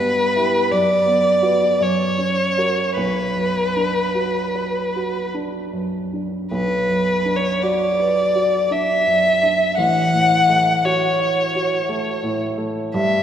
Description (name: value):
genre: classical, romantic duo for violin and grand piano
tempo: 50-59 BPM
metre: 3/4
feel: rubato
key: B minor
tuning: A4 = 440 Hz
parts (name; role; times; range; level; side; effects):
- rich violin; melody; 0.0-13.2 s; B4 to F#5; -18 LUFS; left 1 dB; none
- warm grand piano; accompaniment; 0.0-13.2 s; A1 to C#5; -22 LUFS; right 1 dB; none
room: wet church reverb, RT60 2.8 s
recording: recorded in a church or concert hall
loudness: -16 LUFS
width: side -9 dB against mid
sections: 0.0-6.5 A section; 6.5-13.2 A section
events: none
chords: 0.0 Em/G; 0.7 Bm/F#; 1.8 F#; 3.0 Bm; 9.8 F#m/A